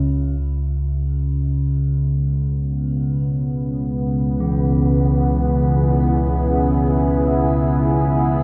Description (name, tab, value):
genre	dark ambient drone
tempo	free time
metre	none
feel	none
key	C# minor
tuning	A4 = 440 Hz
part	analog drone	drone	0.0-8.4 s	C#2 to C#3	-21 LUFS	equal	chorus
part	deep dark ambient pad	sustained chords	2.7-8.4 s	C#3 to G#4	-24 LUFS	equal	chorus, built-in reverb, shimmer reverb
part	bronze singing bowl	arpeggios	4.4-8.4 s	E3	-31 LUFS	equal	diffuse ambient delay
room	wet cathedral reverb, RT60 5.5 s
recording	in a vast, echoing space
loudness	-19 LUFS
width	mono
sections	0.4-8.4 A section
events	none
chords	0.4 C#m